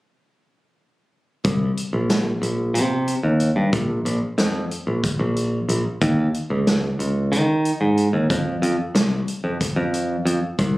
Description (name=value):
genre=progressive instrumental, band music in an uneven meter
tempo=184 BPM (eighths)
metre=7/8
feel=straight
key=unclear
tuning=A4 = 440 Hz
part: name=modern bright picked electric bass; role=bass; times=1.4-10.8 s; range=Bb1 to Eb3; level=-20 LUFS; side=equal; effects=none
part: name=swinging big-band drum kit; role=drums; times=1.4-10.7 s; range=hi-hat, kick drum, snare drum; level=-24 LUFS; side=equal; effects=none
room=light reverb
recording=recorded on a phone in the room, club reverb, compression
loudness=-19 LUFS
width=side -19 dB against mid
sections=1.4-10.6 A section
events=none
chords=none